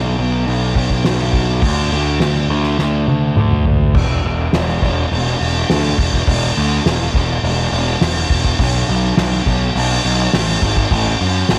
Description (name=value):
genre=psychedelic rock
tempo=104 BPM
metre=4/4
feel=straight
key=unclear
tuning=A4 = 439 Hz
part: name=fuzz picked electric bass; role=bass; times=0.0-11.6 s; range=E1 to F#2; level=-19 LUFS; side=equal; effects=overdrive
part: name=soft-mallet drum kit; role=drums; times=0.2-11.6 s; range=crash cymbal, kick drum, ride cymbal, snare drum, toms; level=-19 LUFS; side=equal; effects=none
room=light reverb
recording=none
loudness=-16 LUFS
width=mono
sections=0.0-4.0 A section; 4.0-11.6 B section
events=drum fill 2.8-4.0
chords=none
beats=0.47 1.05 | 1.63 2.21 2.79 3.38 | 3.96 4.54 5.12 5.70 | 6.28 6.86 7.44 8.02 | 8.60 9.18 9.75 10.33 | 10.91 11.49